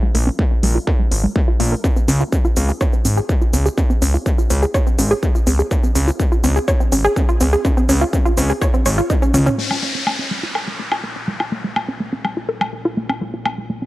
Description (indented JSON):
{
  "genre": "melodic techno",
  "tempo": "124 BPM",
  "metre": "4/4",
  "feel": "straight",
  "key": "Bb minor",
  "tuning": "A4 = 440 Hz",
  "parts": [
    { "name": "wide unison pluck", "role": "arpeggios", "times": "0.0-13.9 s", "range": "Ab3 to Db5", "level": "-21 LUFS", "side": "equal", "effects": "sidechain pumping, tape echo" },
    { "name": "fat analog bass", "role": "bass", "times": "0.1-9.5 s", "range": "Ab1 to Db2", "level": "-17 LUFS", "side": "equal", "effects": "sidechain pumping" },
    { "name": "techno drum kit", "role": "drums", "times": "0.1-13.6 s", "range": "hi-hat, shaker, toms, woodblock", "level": "-24 LUFS", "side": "left 1 dB", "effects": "studio ambience" },
    { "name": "electronic kick drum", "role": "drums", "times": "0.4-9.2 s", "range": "none", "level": "-17 LUFS", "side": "equal", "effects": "distortion, studio ambience" },
    { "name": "deep dark ambient pad", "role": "sustained chords", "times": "10.6-13.9 s", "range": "Bb2 to Db5", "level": "-37 LUFS", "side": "left 1 dB", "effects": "chorus, built-in reverb, sidechain pumping" },
    { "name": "downlifter", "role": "sound effects", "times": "9.6-13.5 s", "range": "none", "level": "-26 LUFS", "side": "left 2 dB", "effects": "none" }
  ],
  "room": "light reverb",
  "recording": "dry, gritty hardware recording, cassette tape",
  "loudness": "-15 LUFS",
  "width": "side -17 dB against mid",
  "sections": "0.0-9.6 A section; 9.6-13.9 B section",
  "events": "filter sweep on synth arpeggio sound 0.0-9.6, 9.6-13.9; drum fill 9.2-9.6; filter sweep on ambient pad 9.6-13.9",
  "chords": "0.0 N.C.; 1.8 Db5; 9.6 Bbm",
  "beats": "0.39 0.87 1.36 | 1.84 2.33 2.81 3.29 | 3.78 4.26 4.75 5.23 | 5.71 6.20 6.68 7.16 | 7.65 8.13 8.62 9.10 | 9.58 10.07 10.55 11.04 | 11.52 12.00 12.49 12.97 | 13.46"
}